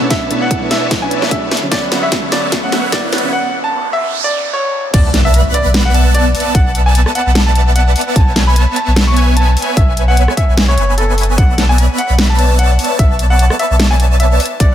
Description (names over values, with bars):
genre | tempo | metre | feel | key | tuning
future bass | 149 BPM | 4/4 | swing 55% on 16ths, half-time | B dorian | A4 = 440 Hz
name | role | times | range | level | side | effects
soft round pluck | accompaniment | 0.0-3.3 s | B2 to G#4 | -22 LUFS | right 2 dB | chorus, cassette tape, sidechain pumping
supersaw chords | riff | 0.0-14.7 s | B3 to B5 | -19 LUFS | right 1 dB | phaser, sidechain pumping, low-pass filter
riser, noise sweep and impact | sound effects | 0.7-6.5 s | none | -22 LUFS | equal | none
bright concert grand piano | melody | 0.1-14.7 s | A4 to C#6 | -18 LUFS | equal | sidechain pumping, tape echo
dubstep drum kit | drums | 0.1-14.7 s | crash cymbal, hi-hat, rim click, snare drum | -18 LUFS | equal | high-pass filter on hats, high-pass filter on snare, high-pass filter on cymbals, high-pass filter on room
electronic kick drum | drums | 0.1-14.7 s | none | -14 LUFS | equal | none
airy dreamy lead | arpeggios | 4.9-14.7 s | F#5 to B5 | -24 LUFS | equal | chorus, sidechain pumping
saturated sub bass | bass | 4.9-14.7 s | F#1 to B1 | -12 LUFS | equal | sidechain pumping
room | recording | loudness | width
little or no reverb | high-pass filter | -10 LUFS | side -11 dB against mid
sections
0.0-4.9 A section; 4.9-14.7 B section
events
build-up 0.0-4.9; drum fill 0.0-3.3; riser 0.7-3.3; noise sweep 3.3-4.9; drop 4.9-14.7; impact 4.9-6.5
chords
0.0 Bm11; 1.5 Dmaj7; 4.9 E9sus4/B; 8.2 Amaj7/B; 11.4 Bm11